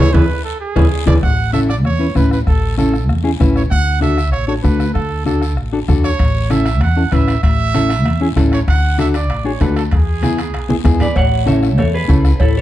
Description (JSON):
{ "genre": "latin, cumbia", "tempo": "193 BPM", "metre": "4/4", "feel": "straight", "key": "A major", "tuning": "A4 = 441 Hz", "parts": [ { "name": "bright trumpet", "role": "second line", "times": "0.0-10.8 s", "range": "G#4 to F#5", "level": "-22 LUFS", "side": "right 6 dB", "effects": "none" }, { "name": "mellow electric guitar", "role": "accompaniment", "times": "0.0-12.3 s", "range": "B3 to B4", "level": "-18 LUFS", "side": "left 2 dB", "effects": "none" }, { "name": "upright bass", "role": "bass", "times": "0.0-12.6 s", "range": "A1 to E2", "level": "-17 LUFS", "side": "equal", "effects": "none" }, { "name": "congas", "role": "percussion", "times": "0.0-12.6 s", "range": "none", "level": "-22 LUFS", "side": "right 2 dB", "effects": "none" }, { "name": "bombo", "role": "percussion", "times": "0.1-12.6 s", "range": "none", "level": "-17 LUFS", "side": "left 1 dB", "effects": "none" }, { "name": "guiro", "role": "percussion", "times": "0.1-12.6 s", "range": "none", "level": "-35 LUFS", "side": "left 9 dB", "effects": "none" }, { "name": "timbales and cowbell", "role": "percussion", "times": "0.1-1.1, 6.2-12.6 s", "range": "none", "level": "-28 LUFS", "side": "right 6 dB", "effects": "none" }, { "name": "clean electric guitar", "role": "melody", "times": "11.0-12.6 s", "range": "E4 to F#5", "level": "-20 LUFS", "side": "equal", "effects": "spring reverb" } ], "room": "light reverb", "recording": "dark, warm production", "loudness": "-12 LUFS", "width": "side -14 dB against mid", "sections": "0.0-1.2 A section; 1.2-11.2 B section; 11.2-12.6 C section", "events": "band accent 0.0-1.2; trumpet solo 0.0-1.2, 1.2-11.2; drum fill 0.6-1.2, 10.7-11.2", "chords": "0.0 E; 1.2 A; 3.7 D; 6.2 A; 8.7 D; 9.9 E; 11.2 A", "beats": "0.30 0.61 0.92 | 1.23 1.54 1.85 2.16 | 2.47 2.78 3.09 3.40 | 3.71 4.02 4.33 4.64 | 4.96 5.26 5.58 5.89 | 6.20 6.51 6.82 7.13 | 7.44 7.75 8.06 8.37 | 8.68 8.99 9.30 9.61 | 9.92 10.23 10.54 10.85 | 11.16 11.47 11.78 12.09 | 12.40" }